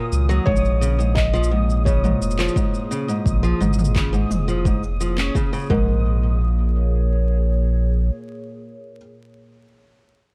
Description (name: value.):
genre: folktronica.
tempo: 86 BPM.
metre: 4/4.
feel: straight.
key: Bb minor.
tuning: A4 = 440 Hz.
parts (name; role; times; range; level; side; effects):
felt-muted upright piano; melody; 0.0-9.0 s; Bb4 to Eb5; -31 LUFS; equal; delay.
warbly tape-like pad; sustained chords; 0.1-9.6 s; Bb2 to Db5; -35 LUFS; equal; chorus, built-in reverb.
picked old ladder-braced acoustic guitar; arpeggios; 0.0-6.4 s; Ab2 to Db4; -27 LUFS; equal; vintage 12-bit sampler grit, delay.
flickering grainy texture; texture; 0.0-6.1 s; Eb6; -38 LUFS; equal; built-in reverb.
warm sub bass; bass; 0.1-8.1 s; F1 to Db2; -22 LUFS; equal; none.
organic electronic drum kit; drums; 0.1-5.7 s; handclaps, shaker, toms; -30 LUFS; equal; none.
electronic kick drum; drums; 0.5-5.8 s; none; -24 LUFS; equal; none.
room: little or no reverb.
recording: dark, warm production, vinyl crackle.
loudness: -20 LUFS.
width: mono.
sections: 0.0-6.0 A section; 6.0-8.8 B section.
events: none.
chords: 0.5 Bbm7; 5.7 Bb7sus4; 6.0 Bbm7.